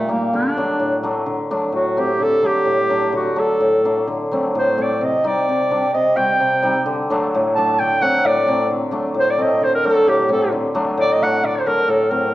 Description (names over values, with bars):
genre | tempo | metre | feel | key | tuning
klezmer | 130 BPM | 2/4 | straight | D phrygian dominant | A4 = 440 Hz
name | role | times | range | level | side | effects
warm clarinet | melody | 0.0-12.3 s | A3 to A5 | -18 LUFS | right 1 dB | none
hammered dulcimer | accompaniment | 0.0-12.3 s | A2 to F#4 | -19 LUFS | left 1 dB | none
room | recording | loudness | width
wet recital hall reverb, RT60 1.4 s | worn, warbling old tape, cassette tape, warbly pitch drift | -16 LUFS | side -15 dB against mid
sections
0.0-1.3 A section; 1.3-8.7 B section; 8.7-12.3 C section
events
speeding up 0.0-12.3; clarinet solo 1.3-8.7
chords
0.3 D; 5.0 Cm; 6.9 D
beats
| 0.33 0.81 | 1.28 1.75 | 2.22 2.69 | 3.16 3.62 | 4.09 4.56 | 5.02 5.49 | 5.95 6.41 | 6.88 7.34 | 7.79 8.26 | 8.71 9.17 | 9.63 10.08 | 10.54 10.99 | 11.44 11.90